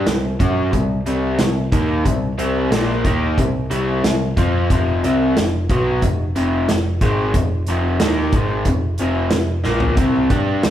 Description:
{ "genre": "classic rock", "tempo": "91 BPM", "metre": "4/4", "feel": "straight", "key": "unclear", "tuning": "A4 = 440 Hz", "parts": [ { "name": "raw garage guitar", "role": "riff", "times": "0.0-10.7 s", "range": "F2 to G4", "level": "-19 LUFS", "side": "left 1 dB", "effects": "overdrive" }, { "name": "picked electric bass", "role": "bass", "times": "0.0-10.7 s", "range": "F1 to G2", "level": "-23 LUFS", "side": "equal", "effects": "none" }, { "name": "big rock drum kit", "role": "drums", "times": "0.1-10.7 s", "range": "hi-hat, kick drum, snare drum, toms", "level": "-20 LUFS", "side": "equal", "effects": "none" } ], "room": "moderate large studio reverb, RT60 1.2 s", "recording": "band playing live in one room", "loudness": "-16 LUFS", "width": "side -11 dB against mid", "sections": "0.0-10.7 A section", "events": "drum fill 9.7-10.0", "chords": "0.0 C5; 4.7 F5; 10.0 C5" }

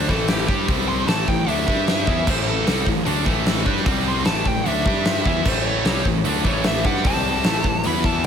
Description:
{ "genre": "hard rock", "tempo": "151 BPM", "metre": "4/4", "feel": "straight", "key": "unclear", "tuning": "A4 = 440 Hz", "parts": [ { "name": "nasal lead guitar with a parked wah", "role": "melody", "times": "0.0-8.3 s", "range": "G4 to C6", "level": "-26 LUFS", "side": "equal", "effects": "overdrive, tape echo" }, { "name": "scooped high-gain guitar", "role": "riff", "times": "0.0-8.3 s", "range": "A2 to G4", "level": "-25 LUFS", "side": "right 14 dB", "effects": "distortion" }, { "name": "tight distorted guitar", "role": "riff", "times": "0.0-8.3 s", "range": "A2 to G4", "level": "-26 LUFS", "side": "left 12 dB", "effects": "distortion" }, { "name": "fuzz picked electric bass", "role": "bass", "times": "0.0-8.3 s", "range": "A1 to G2", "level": "-25 LUFS", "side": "equal", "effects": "overdrive" }, { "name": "huge arena drum kit", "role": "drums", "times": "0.1-8.3 s", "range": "crash cymbal, hi-hat, kick drum, snare drum", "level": "-22 LUFS", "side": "equal", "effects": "none" }, { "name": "bright tonewheel organ", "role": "sustained chords", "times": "5.5-8.3 s", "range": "E3 to D5", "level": "-34 LUFS", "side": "right 1 dB", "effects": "none" } ], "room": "small room reverb", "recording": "none", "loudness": "-18 LUFS", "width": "side -8 dB against mid", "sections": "0.0-8.3 A section", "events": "lead electric guitar solo 0.0-8.3", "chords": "0.0 A5; 0.7 C5; 1.1 A5; 1.7 G5; 2.1 A5; 3.9 C5; 4.3 A5; 4.9 G5; 5.3 A; 7.1 C5; 7.5 A5" }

